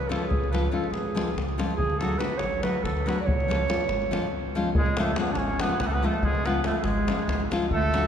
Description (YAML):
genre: balkan folk, Balkan wedding band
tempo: 284 BPM (eighths)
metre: 7/8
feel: straight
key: C# phrygian dominant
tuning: A4 = 439 Hz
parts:
  - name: mellow clarinet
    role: melody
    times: 0.0-8.1 s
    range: G#3 to D5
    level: -29 LUFS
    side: right 3 dB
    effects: none
  - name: upright bass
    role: bass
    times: 0.0-8.1 s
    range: G#1 to D2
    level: -30 LUFS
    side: equal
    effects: none
  - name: nylon-string guitar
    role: accompaniment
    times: 0.1-8.1 s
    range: E#3 to F#4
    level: -29 LUFS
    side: left 3 dB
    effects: none
  - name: davul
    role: percussion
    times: 0.1-8.0 s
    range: none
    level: -30 LUFS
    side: left 1 dB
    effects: none
  - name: clear trumpet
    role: second line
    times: 4.8-8.1 s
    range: G#4 to D5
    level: -32 LUFS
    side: equal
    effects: none
room: wet cathedral reverb, RT60 6.8 s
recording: recorded in a church or concert hall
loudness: -23 LUFS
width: side -8 dB against mid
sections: 0.0-4.8 A section; 4.8-8.1 A section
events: none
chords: 0.0 C#; 1.8 D; 3.3 C#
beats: 0.10 | 0.31 0.52 0.73 0.94 1.16 1.37 1.58 | 1.79 2.00 2.21 2.43 2.64 2.85 3.06 | 3.27 3.48 3.69 3.91 4.12 4.33 4.54 | 4.75 4.96 5.17 5.39 5.60 5.81 6.02 | 6.23 6.44 6.66 6.87 7.08 7.29 7.50 | 7.71 7.92